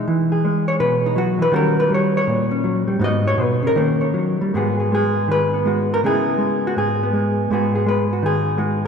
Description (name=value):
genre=solo jazz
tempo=162 BPM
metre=4/4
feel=swing 65% on 8ths, rubato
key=G# minor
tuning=A4 = 436 Hz
part: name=hollow-body jazz guitar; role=solo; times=0.0-8.9 s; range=G#2 to D#5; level=-16 LUFS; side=equal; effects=none
room=wet church reverb, RT60 2.9 s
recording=recorded in a church or concert hall, nothing above 11.0 kHz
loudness=-16 LUFS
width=side -6 dB against mid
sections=0.0-4.5 A section; 4.5-8.9 B section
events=hollow-body jazz guitar solo 0.0-4.5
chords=0.0 Emaj7; 1.5 D#7#9; 3.0 G#m7; 3.8 D#7#9; 4.5 G#m7; 6.0 C#m7; 7.5 G#m7